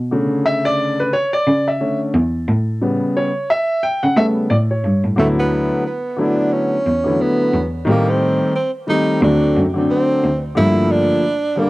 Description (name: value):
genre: hip hop, jazz-hop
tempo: 89 BPM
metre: 4/4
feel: swing 60% on 16ths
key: D major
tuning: A4 = 440 Hz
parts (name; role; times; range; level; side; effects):
- rich cello; bass; 0.0-11.0 s; D2 to A3; -18 LUFS; equal; none
- dark baby grand piano; accompaniment; 0.1-11.7 s; C#3 to G5; -17 LUFS; left 1 dB; cassette tape
- breathy tenor saxophone; melody; 5.2-11.7 s; A3 to E4; -19 LUFS; right 2 dB; cassette tape, tape echo
room: moderate small room reverb, RT60 0.6 s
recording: home recording on cassette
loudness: -15 LUFS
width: side -19 dB against mid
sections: 0.0-5.2 A section; 5.2-11.7 B section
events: grand piano solo 0.0-5.2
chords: 0.0 Bm7; 2.5 A7; 5.2 D69; 7.9 Am7b5; 9.2 D7; 10.6 Gm9